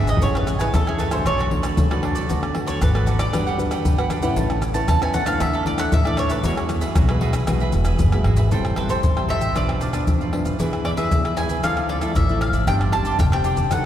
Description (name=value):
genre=samba and choro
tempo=116 BPM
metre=4/4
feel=straight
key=A minor from 8.5 s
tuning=A4 = 440 Hz
part: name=bowl-back mandolin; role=melody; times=0.0-13.9 s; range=F#4 to A5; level=-26 LUFS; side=equal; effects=none
part: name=cavaquinho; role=accompaniment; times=0.0-13.9 s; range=D4 to A5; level=-29 LUFS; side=right 5 dB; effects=none
part: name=nylon-string guitar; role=accompaniment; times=0.0-13.9 s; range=A2 to B4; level=-26 LUFS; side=left 2 dB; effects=none
part: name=upright bass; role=bass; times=0.0-13.9 s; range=E1 to F2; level=-24 LUFS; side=equal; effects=none
part: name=surdo, maracas, pandeiro and tamborim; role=percussion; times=0.0-13.8 s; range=none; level=-22 LUFS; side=left 1 dB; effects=none
room=wet cathedral reverb, RT60 5.0 s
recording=recorded in a church or concert hall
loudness=-18 LUFS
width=side -11 dB against mid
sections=0.0-8.5 A section; 8.5-13.9 B section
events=drum fill 0.0; mandolin solo 0.0-8.5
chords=0.2 Amaj7; 1.3 Bm7; 2.3 D6; 3.3 Gmaj7; 4.4 Aadd9; 5.4 Dsus2; 6.4 Eadd9; 8.5 Am7; 9.6 Bdim; 10.6 E; 11.6 Dmadd9; 12.7 Gsus4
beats=| 0.22 0.74 1.26 1.78 | 2.30 2.82 3.33 3.85 | 4.37 4.89 5.41 5.93 | 6.45 6.96 7.48 8.00 | 8.52 9.04 9.56 10.08 | 10.60 11.12 11.64 12.16 | 12.68 13.20 13.72